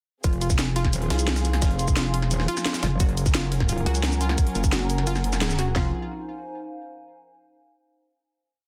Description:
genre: dark technical drum and bass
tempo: 174 BPM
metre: 4/4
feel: straight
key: F phrygian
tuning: A4 = 439 Hz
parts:
  - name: dark studio string section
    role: sustained chords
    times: 0.2-5.9 s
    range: F3 to Bb4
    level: -37 LUFS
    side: equal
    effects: sidechain pumping
  - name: analog pluck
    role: arpeggios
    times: 0.2-5.9 s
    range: F4 to Ab4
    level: -36 LUFS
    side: equal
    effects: chorus, sidechain pumping, delay
  - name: metallic wobble bass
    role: bass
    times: 0.2-5.9 s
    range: F1 to Gb1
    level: -28 LUFS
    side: equal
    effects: distortion, chorus, overdrive
  - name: breakbeat sampler-style drum kit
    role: drums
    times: 0.2-5.7 s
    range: hi-hat, snare drum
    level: -40 LUFS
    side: equal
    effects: high-pass filter on hats, studio ambience, high-pass filter on snare
  - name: drum and bass drum kit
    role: drums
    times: 0.2-5.8 s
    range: handclaps, kick drum, snare drum, toms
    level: -25 LUFS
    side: equal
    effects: studio ambience
  - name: drum and bass drum kit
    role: drums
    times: 0.2-5.7 s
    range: hi-hat, shaker, snare drum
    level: -30 LUFS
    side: equal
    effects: studio ambience
  - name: warbly tape-like pad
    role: texture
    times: 0.7-7.1 s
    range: Db4 to C6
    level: -37 LUFS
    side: equal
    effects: chorus, built-in reverb, sidechain pumping
  - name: pulsing pluck wobble bass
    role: bass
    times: 1.1-1.6, 3.9-5.7 s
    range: Gb1 to Db2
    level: -26 LUFS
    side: equal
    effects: chorus, tube saturation
room: light reverb, digital ambience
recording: dense, heavily limited modern master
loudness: -24 LUFS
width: mono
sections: 0.2-5.8 drop; 5.8-7.1 final chord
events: drop 0.2-5.8; band accent 5.4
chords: 0.2 Fm7; 3.0 Gb; 5.8 Fm7

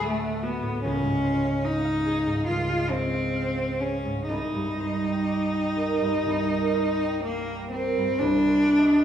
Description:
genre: classical, impressionist duo for cello and harp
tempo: 60-75 BPM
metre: 4/4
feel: rubato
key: unclear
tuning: A4 = 440 Hz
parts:
  - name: clear cello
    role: melody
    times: 0.0-9.0 s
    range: A3 to F4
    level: -24 LUFS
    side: left 1 dB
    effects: none
  - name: concert harp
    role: accompaniment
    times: 0.0-9.0 s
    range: C2 to F6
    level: -28 LUFS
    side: right 3 dB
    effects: none
room: wet recital hall reverb, RT60 1.4 s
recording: recorded in a church or concert hall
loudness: -23 LUFS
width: side -9 dB against mid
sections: 0.0-8.2 A section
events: none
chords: 0.0 D69; 0.9 Dbmaj7; 4.3 Cm9; 8.2 Cmadd9

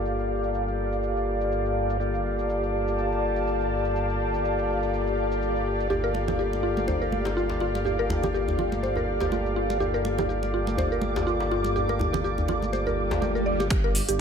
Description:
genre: afro house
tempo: 123 BPM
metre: 4/4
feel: swing 56% on 16ths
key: G minor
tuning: A4 = 442 Hz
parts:
  - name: ethereal airy pad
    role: sustained chords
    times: 0.0-14.2 s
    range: F4 to D6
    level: -30 LUFS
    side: right 2 dB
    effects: ensemble chorus, built-in reverb, sidechain pumping
  - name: mellow tonewheel organ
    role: stabs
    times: 0.0-13.7 s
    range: Bb3 to D5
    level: -29 LUFS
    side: left 2 dB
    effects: slow rotary speaker, sidechain pumping, low-pass filter, ping-pong delay
  - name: dark detuned saw bass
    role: bass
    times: 0.0-14.2 s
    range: G1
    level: -30 LUFS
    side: equal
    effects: tube saturation, sidechain pumping
  - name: house drum kit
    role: drums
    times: 0.1-14.2 s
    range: finger snaps, hi-hat, shaker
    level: -33 LUFS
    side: right 1 dB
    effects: overdrive, low-pass filter on hats, low-pass filter on perc, low-pass filter on snare, low-pass filter on room
  - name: mallet-like synth pluck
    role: arpeggios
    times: 5.9-14.1 s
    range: F4 to D5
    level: -30 LUFS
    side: equal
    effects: chorus, vintage 12-bit sampler grit, sidechain pumping, ping-pong delay
  - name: djembe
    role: percussion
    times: 5.9-13.6 s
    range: none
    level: -33 LUFS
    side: left 2 dB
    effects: none
  - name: congas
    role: percussion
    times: 6.1-13.7 s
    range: none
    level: -35 LUFS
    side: right 3 dB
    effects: none
  - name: swell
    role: sound effects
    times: 12.9-13.7 s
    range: none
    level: -33 LUFS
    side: right 3 dB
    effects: none
  - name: electronic kick drum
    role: drums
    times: 13.7-13.8 s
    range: none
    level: -24 LUFS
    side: equal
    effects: overdrive
room: light reverb, digital ambience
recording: none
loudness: -24 LUFS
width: side -6 dB against mid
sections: 0.0-13.7 A section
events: filter sweep on tonewheel organ 0.0-13.7; swell 12.9-13.7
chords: 0.0 Gm7; 13.7 G7(no3)

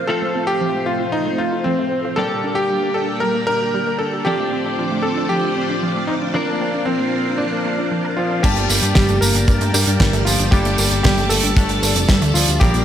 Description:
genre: italo disco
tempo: 115 BPM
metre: 4/4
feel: straight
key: G minor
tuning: A4 = 439 Hz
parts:
  - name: string machine, full ensemble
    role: sustained chords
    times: 0.0-12.8 s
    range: A3 to D6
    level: -24 LUFS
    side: equal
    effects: phaser, ensemble chorus
  - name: analog pluck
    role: arpeggios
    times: 0.0-12.8 s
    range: F3 to Bb4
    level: -27 LUFS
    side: right 2 dB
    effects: chorus, cassette tape, digital delay
  - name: direct-recorded clean electric guitar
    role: stabs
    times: 0.0-12.8 s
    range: F3 to A5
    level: -25 LUFS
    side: left 2 dB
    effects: analog chorus
  - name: clear electric grand piano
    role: melody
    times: 0.1-12.8 s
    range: F3 to Bb4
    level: -21 LUFS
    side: equal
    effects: digital delay
  - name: fat analog bass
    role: bass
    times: 8.4-12.8 s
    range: F1 to G2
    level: -19 LUFS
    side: equal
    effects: tube saturation
  - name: damped 70s drum kit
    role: drums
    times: 8.4-12.8 s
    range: crash cymbal, hi-hat, snare drum, tambourine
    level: -20 LUFS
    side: right 2 dB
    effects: low-pass filter on cymbals, studio reverb, low-pass filter on hats, low-pass filter on snare, low-pass filter on perc, low-pass filter on room, gated reverb
  - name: kick drum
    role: drums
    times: 8.4-12.7 s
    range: none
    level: -16 LUFS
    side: equal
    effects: studio reverb
room: moderate plate reverb, RT60 1.8 s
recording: bright 1980s-style digital production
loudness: -16 LUFS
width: side -10 dB against mid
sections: 0.0-8.4 A section; 8.4-12.8 B section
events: filter sweep on synth arpeggio sound 0.0-8.4; filter sweep on string machine 0.0-8.4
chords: 0.1 F; 2.2 Gm; 4.3 Dm7; 6.3 Bbadd9; 8.4 Gmadd9

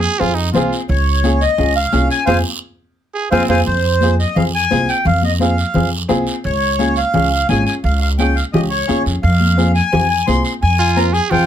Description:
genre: latin, cumbia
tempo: 172 BPM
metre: 4/4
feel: straight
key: F minor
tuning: A4 = 438 Hz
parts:
  - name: growling trumpet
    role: second line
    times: 0.0-0.8, 3.1-3.6, 10.8-11.5 s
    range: C4 to Ab4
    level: -20 LUFS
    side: right 6 dB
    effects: none
  - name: upright bass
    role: bass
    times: 0.0-11.5 s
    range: Ab1 to F2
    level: -17 LUFS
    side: equal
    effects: none
  - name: guiro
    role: percussion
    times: 0.0-11.5 s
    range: none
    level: -28 LUFS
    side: right 6 dB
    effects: none
  - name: clear upright piano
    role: accompaniment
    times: 0.2-11.4 s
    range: C4 to Bb4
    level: -20 LUFS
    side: equal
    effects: none
  - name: congas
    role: percussion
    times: 0.2-11.5 s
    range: none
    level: -21 LUFS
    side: left 3 dB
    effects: none
  - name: accordion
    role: melody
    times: 0.9-11.5 s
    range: C5 to C6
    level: -18 LUFS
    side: equal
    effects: none
room: light reverb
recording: close, detailed microphones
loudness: -13 LUFS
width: side -10 dB against mid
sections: 0.0-3.7 A section; 3.7-11.5 A section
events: band accent 2.3-3.7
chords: 0.0 Fm; 0.9 Db; 2.3 Fm; 6.5 Db; 9.2 Fm

